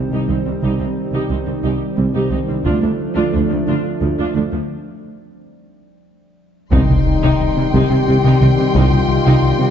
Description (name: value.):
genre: cinematic, hybrid orchestral and electronic film score.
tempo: 59 BPM (dotted quarters).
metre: 6/8.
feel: straight.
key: unclear.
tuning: A4 = 441 Hz.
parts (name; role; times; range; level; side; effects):
dark trombone section; sustained chords; 0.0-9.7 s; Eb3 to A3; -25 LUFS; right 4 dB; none.
warbly tape-like pad; sustained chords; 0.0-9.7 s; F3 to Eb5; -26 LUFS; left 1 dB; chorus, built-in reverb.
harp-like synth pluck; arpeggios; 0.0-9.7 s; C3 to D4; -22 LUFS; right 1 dB; chorus.
impact; sound effects; 0.0-0.6, 6.7-8.8 s; none; -22 LUFS; equal; none.
dark symphonic viola section; accompaniment; 0.1-9.7 s; F3 to G4; -24 LUFS; right 1 dB; none.
rich symphonic cello section; bass; 0.1-9.7 s; C2 to C3; -22 LUFS; right 2 dB; none.
clear studio double bass section; bass; 0.3-8.8 s; C2 to D2; -23 LUFS; right 3 dB; none.
taiko ensemble; drums; 2.7-9.4 s; none; -20 LUFS; left 1 dB; none.
warm symphonic violin section; melody; 6.7-9.7 s; C6; -29 LUFS; left 2 dB; none.
warm symphonic violin section; second line; 6.7-9.7 s; G5; -26 LUFS; left 2 dB; none.
mellow French horn section; sustained chords; 6.7-9.7 s; Eb4 to G4; -20 LUFS; left 4 dB; none.
fat analog bass; riff; 6.7-9.7 s; C2 to C3; -18 LUFS; left 3 dB; none.
warm tuba; bass; 6.7-8.8 s; C2; -25 LUFS; right 2 dB; none.
room: moderate scoring stage reverb, RT60 2.0 s.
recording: dark, warm production, nothing above 7.7 kHz.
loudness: -14 LUFS.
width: side -9 dB against mid.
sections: 0.0-6.7 A section; 6.7-9.7 B section.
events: impact 0.0-0.6, 6.7-8.8; break 4.7-6.7; drum fill 6.2-6.7.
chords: 0.0 Cm; 2.7 Dm; 6.7 Cm.